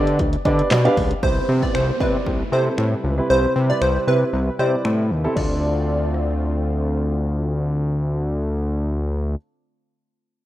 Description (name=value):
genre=dance-pop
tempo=116 BPM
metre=4/4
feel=straight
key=D dorian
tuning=A4 = 440 Hz
part: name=dark baby grand piano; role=accompaniment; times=0.0-9.4 s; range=B3 to F5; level=-24 LUFS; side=right 2 dB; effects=sidechain pumping
part: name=fat analog bass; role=bass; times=0.0-9.4 s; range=C2 to D3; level=-20 LUFS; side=equal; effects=sidechain pumping
part: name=punchy analog drum machine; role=drums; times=0.1-6.3 s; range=crash cymbal, finger snaps, handclaps, hi-hat, kick drum, rim click, snare drum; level=-24 LUFS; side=left 1 dB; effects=none
part: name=plucky unison lead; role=melody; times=1.2-6.9 s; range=B4 to D5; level=-23 LUFS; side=right 1 dB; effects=sidechain pumping, digital delay
part: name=warm analog pad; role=sustained chords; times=1.2-9.4 s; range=C3 to B4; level=-31 LUFS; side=left 1 dB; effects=chorus, sidechain pumping
part: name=downlifter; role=sound effects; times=1.2-5.4 s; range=none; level=-33 LUFS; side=right 4 dB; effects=none
room=moderate plate reverb, RT60 2.1 s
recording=rough home demo mix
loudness=-18 LUFS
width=side -14 dB against mid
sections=0.0-1.2 A section; 1.2-5.4 B section; 5.4-9.5 C section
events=grand piano fill 0.5-1.2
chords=0.0 G/D; 1.2 Cmaj7; 5.4 Dm7